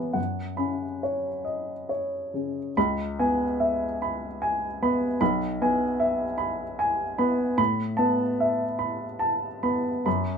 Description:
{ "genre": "neoclassical minimalist piano", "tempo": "46-51 BPM (dotted quarters)", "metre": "6/8", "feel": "rubato", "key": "C# minor", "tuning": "A4 = 441 Hz", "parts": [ { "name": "warm upright piano", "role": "solo", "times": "0.0-10.4 s", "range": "B1 to B5", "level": "-24 LUFS", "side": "equal", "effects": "none" } ], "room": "light reverb", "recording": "band playing live in one room", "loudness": "-24 LUFS", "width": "side -6 dB against mid", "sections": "0.0-2.8 A section; 2.8-10.4 B section", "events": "none", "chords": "0.2 F#sus4; 2.8 C#m7; 5.2 E/B; 7.6 Asus2", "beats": "| 0.17 1.47 | 2.76 4.00 | 5.20 6.39 | 7.58 8.80 | 10.06" }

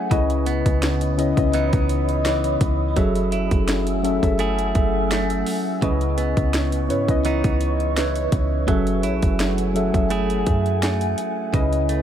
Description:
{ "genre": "contemporary R&B", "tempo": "84 BPM", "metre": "4/4", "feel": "swing 54% on 16ths", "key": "unclear", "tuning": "A4 = 441 Hz", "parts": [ { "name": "muted felt-like synth keys", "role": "accompaniment", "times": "0.0-12.0 s", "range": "C#3 to G#5", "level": "-23 LUFS", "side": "left 2 dB", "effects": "chorus" }, { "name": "ethereal airy pad", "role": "sustained chords", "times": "0.0-12.0 s", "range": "A3 to E6", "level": "-29 LUFS", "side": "left 1 dB", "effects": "ensemble chorus, built-in reverb, sidechain pumping" }, { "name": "direct-recorded clean electric guitar", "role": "arpeggios", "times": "0.0-12.0 s", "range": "C#3 to G#4", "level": "-27 LUFS", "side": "right 8 dB", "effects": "warbly pitch drift, ping-pong delay" }, { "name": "clean 808-style bass", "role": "bass", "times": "0.1-12.0 s", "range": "F#1 to G#2", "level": "-24 LUFS", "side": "equal", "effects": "none" }, { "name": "trap drum kit", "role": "drums", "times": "0.1-12.0 s", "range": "hi-hat, kick drum, snare drum", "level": "-23 LUFS", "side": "equal", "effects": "none" } ], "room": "digital ambience", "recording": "none", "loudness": "-18 LUFS", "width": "side -10 dB against mid", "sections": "0.0-12.0 A section", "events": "none", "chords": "0.1 C#m9; 3.0 F#m9; 5.8 C#m9; 8.7 F#m9", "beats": "| 0.11 0.82 1.54 2.25 | 2.96 3.68 4.39 5.11 | 5.82 6.54 7.25 7.96 | 8.68 9.39 10.11 10.82 | 11.54" }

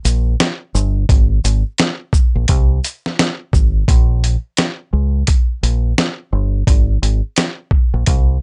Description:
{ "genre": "hip hop, boom-bap hip-hop", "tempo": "86 BPM", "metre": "4/4", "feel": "swing 61% on 16ths", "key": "Bb dorian", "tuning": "A4 = 438 Hz", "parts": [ { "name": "deep dub fingered electric bass", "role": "bass", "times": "0.0-8.4 s", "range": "G1 to Db2", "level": "-18 LUFS", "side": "equal", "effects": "none" }, { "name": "dusty soul sampler-style drum kit", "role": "drums", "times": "0.1-8.3 s", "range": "hi-hat, kick drum, shaker, snare drum", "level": "-16 LUFS", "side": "equal", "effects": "none" } ], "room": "little or no reverb", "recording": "nothing above 10.9 kHz", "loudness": "-16 LUFS", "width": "mono", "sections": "0.0-3.9 A section; 3.9-8.4 B section", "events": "none", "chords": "none", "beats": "0.39 | 1.09 1.79 2.49 3.18 | 3.88 4.58 5.28 5.97 | 6.67 7.37 8.07" }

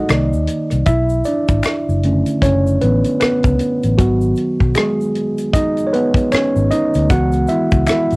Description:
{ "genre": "R&B, neo-soul", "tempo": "77 BPM", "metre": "4/4", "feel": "swing 59% on 16ths", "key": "unclear", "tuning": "A4 = 440 Hz", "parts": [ { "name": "tine electric piano", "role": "accompaniment", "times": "0.0-8.2 s", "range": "D3 to F#5", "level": "-16 LUFS", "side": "right 1 dB", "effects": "cassette tape" }, { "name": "vintage muted fingered electric bass", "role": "bass", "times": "0.1-8.2 s", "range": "F#1 to Eb2", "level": "-17 LUFS", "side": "equal", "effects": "transformer saturation" }, { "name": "tight funk drum kit", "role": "drums", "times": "0.1-8.2 s", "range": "hi-hat, kick drum, rim click", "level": "-18 LUFS", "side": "equal", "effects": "cassette tape" }, { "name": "finger snaps and egg shaker", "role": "percussion", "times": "0.1-8.2 s", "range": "none", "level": "-31 LUFS", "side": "left 5 dB", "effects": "none" } ], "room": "little or no reverb", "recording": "home recording on cassette", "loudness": "-13 LUFS", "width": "side -26 dB against mid", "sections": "0.0-8.2 A section", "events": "tine electric piano solo 0.0-8.2", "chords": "0.1 Cm9; 0.9 Bm9; 4.0 G#m7; 7.1 C#m7", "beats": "0.09 | 0.87 1.65 2.43 3.21 | 3.99 4.76 5.54 6.32 | 7.10 7.88" }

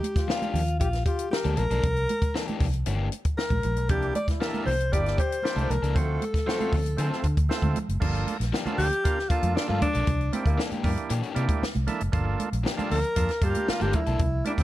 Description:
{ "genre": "funk", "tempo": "116 BPM", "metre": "4/4", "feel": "straight", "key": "G dorian", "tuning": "A4 = 441 Hz", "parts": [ { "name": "breathy alto saxophone", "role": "melody", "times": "0.0-14.6 s", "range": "Bb3 to D5", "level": "-29 LUFS", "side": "left 1 dB", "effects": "none" }, { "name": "compact cocktail drum kit", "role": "drums", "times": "0.0-14.6 s", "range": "crash cymbal, hi-hat, kick drum, snare drum", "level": "-28 LUFS", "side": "equal", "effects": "none" }, { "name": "congas", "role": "percussion", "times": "0.0-14.6 s", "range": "none", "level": "-35 LUFS", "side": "right 4 dB", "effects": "none" }, { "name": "clear trombone", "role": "second line", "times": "0.2-5.6, 14.5 s", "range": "D4 to C5", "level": "-36 LUFS", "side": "left 6 dB", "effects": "tube saturation" }, { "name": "vintage muted fingered electric bass", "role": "bass", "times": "0.2-14.6 s", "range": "F#1 to D3", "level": "-27 LUFS", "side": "equal", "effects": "none" }, { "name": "overdriven electric guitar", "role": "accompaniment", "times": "0.3-14.2 s", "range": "E3 to C5", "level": "-34 LUFS", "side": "left 6 dB", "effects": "tube saturation" }, { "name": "overdriven tonewheel organ", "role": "stabs", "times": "3.9-14.6 s", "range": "A3 to Bb4", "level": "-33 LUFS", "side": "right 5 dB", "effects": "none" } ], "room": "studio ambience", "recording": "dark, warm production", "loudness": "-23 LUFS", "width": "side -15 dB against mid", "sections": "0.0-8.0 A section; 8.0-14.6 B section", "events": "band accent 14.2-14.6", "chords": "0.0 Ebmaj9; 1.8 C9; 6.0 D7#9; 8.0 Gm7; 10.1 C9; 12.1 Gm7", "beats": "0.29 0.81 1.32 | 1.84 2.35 2.87 3.38 | 3.90 4.41 4.93 5.44 | 5.96 6.47 6.99 7.50 | 8.02 8.53 9.05 9.56 | 10.08 10.59 11.11 11.62 | 12.14 12.65 13.17 13.68 | 14.20" }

